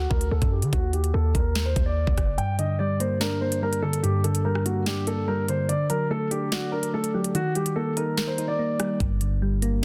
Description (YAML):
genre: hip hop, drill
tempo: 145 BPM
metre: 4/4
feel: half-time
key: G harmonic minor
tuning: A4 = 440 Hz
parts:
  - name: dark baby grand piano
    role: melody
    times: 0.0-9.0 s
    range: F#4 to G5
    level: -31 LUFS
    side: equal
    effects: low-pass filter
  - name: hard-hitting 808-style bass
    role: bass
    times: 0.0-2.4, 9.0-9.8 s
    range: F#1 to D3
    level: -27 LUFS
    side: equal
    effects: none
  - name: drill drum kit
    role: drums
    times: 0.1-9.7 s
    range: hi-hat, kick drum, rim click, snare drum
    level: -30 LUFS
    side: equal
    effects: none
  - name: soft electric-piano-like synth keys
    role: accompaniment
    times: 2.4-9.8 s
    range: G2 to D5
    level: -28 LUFS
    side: equal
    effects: chorus, low-pass filter
room: light reverb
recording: dense, heavily limited modern master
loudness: -25 LUFS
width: mono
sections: 0.0-9.8 A section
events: filter sweep 0.0-2.4; kick muted 2.4-9.0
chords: 0.0 D; 0.7 F#5; 2.4 Gm; 5.7 D; 7.3 Eb; 9.0 Gm